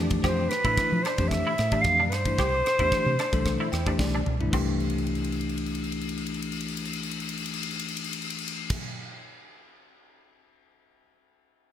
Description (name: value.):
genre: electric jazz fusion.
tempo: 112 BPM.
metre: 4/4.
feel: straight.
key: C major.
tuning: A4 = 439 Hz.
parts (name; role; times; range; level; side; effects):
bell-like tine electric piano; accompaniment; 0.0-8.8 s; E3 to G5; -31 LUFS; left 3 dB; none.
semi-hollow electric guitar; stabs; 0.0-7.1 s; C4 to G4; -34 LUFS; right 1 dB; ensemble chorus.
woody fretless electric bass; bass; 0.0-8.8 s; C2 to F3; -30 LUFS; right 1 dB; none.
crisp fusion drum kit; drums; 0.1-10.3 s; crash cymbal, kick drum, ride cymbal, rim click, snare drum, toms; -31 LUFS; equal; gated reverb.
bright concert flute; melody; 0.2-3.9 s; B4 to F5; -26 LUFS; right 1 dB; none.
room: light reverb, small room ambience.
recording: bright 1980s-style digital production.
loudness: -24 LUFS.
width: side -10 dB against mid.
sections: 0.0-4.5 A section; 4.5-8.8 B section.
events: tine electric piano fill 3.5-4.5; drum fill 4.0-4.5, 4.8-8.7.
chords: 0.0 Fmaj9; 2.4 Cadd9.